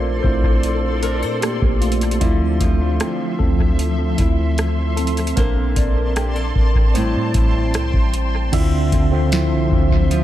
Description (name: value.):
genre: contemporary R&B.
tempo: 76 BPM.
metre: 4/4.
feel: straight.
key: D minor.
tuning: A4 = 443 Hz.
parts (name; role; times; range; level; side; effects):
mellow tine electric piano; accompaniment; 0.0-10.2 s; D3 to E5; -22 LUFS; right 1 dB; medium stereo tremolo, dub echo.
granular cloud pad; sustained chords; 0.0-10.2 s; F3 to C6; -27 LUFS; equal; built-in reverb.
flamenco guitar; arpeggios; 0.0-10.2 s; A2 to C5; -27 LUFS; left 1 dB; dub echo.
clean 808-style bass; bass; 0.0-10.2 s; A1 to Bb2; -20 LUFS; equal; none.
booming analog drum machine; drums; 0.2-10.2 s; crash cymbal, hi-hat, kick drum, rim click, snare drum; -20 LUFS; equal; none.
room: little or no reverb.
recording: echo-heavy mix.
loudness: -16 LUFS.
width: side -13 dB against mid.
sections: 0.0-8.5 A section; 8.5-10.2 B section.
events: tine electric piano solo 0.0-8.5.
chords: 0.0 Bbmaj9; 2.2 Dm9; 5.4 Bbmaj9; 6.9 Am7; 8.5 Dm9.